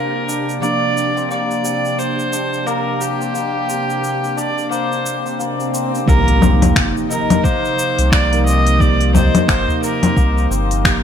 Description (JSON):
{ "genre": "organic downtempo", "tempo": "88 BPM", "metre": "4/4", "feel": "swing 59% on 16ths", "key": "C minor", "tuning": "A4 = 442 Hz", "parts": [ { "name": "clear kamancheh", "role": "melody", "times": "0.0-10.5 s", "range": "G4 to Eb5", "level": "-21 LUFS", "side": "right 1 dB", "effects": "digital delay" }, { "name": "muted felt-like synth keys", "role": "accompaniment", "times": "0.0-11.0 s", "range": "C3 to Bb4", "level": "-24 LUFS", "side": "right 5 dB", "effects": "chorus, sidechain pumping, ping-pong delay" }, { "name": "airy breathy pad", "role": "sustained chords", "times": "0.0-11.0 s", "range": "C3 to Eb4", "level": "-25 LUFS", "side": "equal", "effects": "chorus, sidechain pumping" }, { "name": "santur", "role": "arpeggios", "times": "0.0-11.0 s", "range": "Bb3 to Eb4", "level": "-24 LUFS", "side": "left 6 dB", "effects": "ping-pong delay" }, { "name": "wind-like tuned noise texture", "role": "texture", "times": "0.0-6.1 s", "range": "G4", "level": "-32 LUFS", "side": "right 1 dB", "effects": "built-in reverb" }, { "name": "organic electronic drum kit", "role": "drums", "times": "0.3-11.0 s", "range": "cabasa, congas, finger snaps, hi-hat", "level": "-19 LUFS", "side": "left 3 dB", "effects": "gated reverb" }, { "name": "swell and impact", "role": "sound effects", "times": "5.4-8.8 s", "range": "none", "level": "-25 LUFS", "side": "equal", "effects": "none" }, { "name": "warm sub bass", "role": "bass", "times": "6.1-11.0 s", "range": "G1 to C2", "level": "-16 LUFS", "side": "equal", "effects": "sidechain pumping" }, { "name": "electronic kick drum", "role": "drums", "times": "6.1-11.0 s", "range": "none", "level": "-17 LUFS", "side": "equal", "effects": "none" }, { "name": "udu", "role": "percussion", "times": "9.1-9.8 s", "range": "none", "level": "-22 LUFS", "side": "right 1 dB", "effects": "none" } ], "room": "moderate lush hall reverb, RT60 2.4 s", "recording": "bright 1980s-style digital production", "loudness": "-14 LUFS", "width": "side -8 dB against mid", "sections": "0.0-6.1 A section; 6.1-11.0 B section", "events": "swell 5.4-6.1; impact 6.1-8.8", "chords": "0.0 Bbadd9/C; 6.1 Cm7", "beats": "| 0.62 1.30 1.99 2.67 | 3.35 4.03 4.71 5.39 | 6.08 6.76 7.44 8.12 | 8.80 9.49 10.17 10.85" }